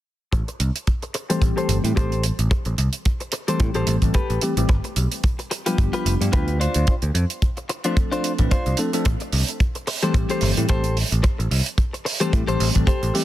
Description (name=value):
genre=nu-disco, nu disco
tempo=110 BPM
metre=4/4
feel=swing 56% on 16ths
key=A minor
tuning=A4 = 442 Hz
part: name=direct-recorded clean electric guitar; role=riff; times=0.3-13.1 s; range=D4 to C5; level=-27 LUFS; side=left 2 dB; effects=lush chorus, low-pass filter, analog delay
part: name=picked electric bass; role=bass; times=0.3-13.1 s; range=F1 to A2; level=-22 LUFS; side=equal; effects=none
part: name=hi-hat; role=drums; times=0.3-13.2 s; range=none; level=-28 LUFS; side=right 6 dB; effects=none
part: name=kick drum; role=drums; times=0.3-13.0 s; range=none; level=-20 LUFS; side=equal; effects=none
part: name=bell-like tine electric piano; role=accompaniment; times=1.3-13.2 s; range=E3 to B4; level=-26 LUFS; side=left 1 dB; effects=phaser, sidechain pumping, low-pass filter, analog delay
room=studio ambience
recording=dense, heavily limited modern master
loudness=-19 LUFS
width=side -14 dB against mid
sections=0.3-13.2 A section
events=filter sweep on clean electric guitar 0.3-13.2; filter sweep on tine electric piano 0.3-13.2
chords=0.3 Am7; 4.7 G7; 6.6 Dm7; 9.1 Am7